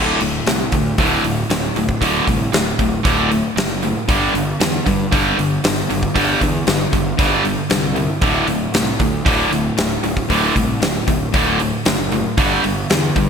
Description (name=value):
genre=hard rock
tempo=116 BPM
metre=4/4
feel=straight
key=unclear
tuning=A4 = 440 Hz
part: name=distorted electric guitar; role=riff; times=0.0-13.3 s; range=D2 to G3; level=-21 LUFS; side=left 11 dB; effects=distortion
part: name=distorted electric guitar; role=riff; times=0.0-13.3 s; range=D2 to G3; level=-20 LUFS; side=right 9 dB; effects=overdrive
part: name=fuzz fingered electric bass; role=bass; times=0.0-13.3 s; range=D1 to G2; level=-23 LUFS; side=equal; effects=overdrive
part: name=huge arena drum kit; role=drums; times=0.2-13.3 s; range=hi-hat, kick drum, snare drum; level=-20 LUFS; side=equal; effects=gated reverb
room=moderate lush hall reverb, RT60 2.4 s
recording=bright 1980s-style digital production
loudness=-15 LUFS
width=side -6 dB against mid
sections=0.0-13.3 A section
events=none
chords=0.0 D5; 4.1 G5; 8.2 D5; 12.4 G5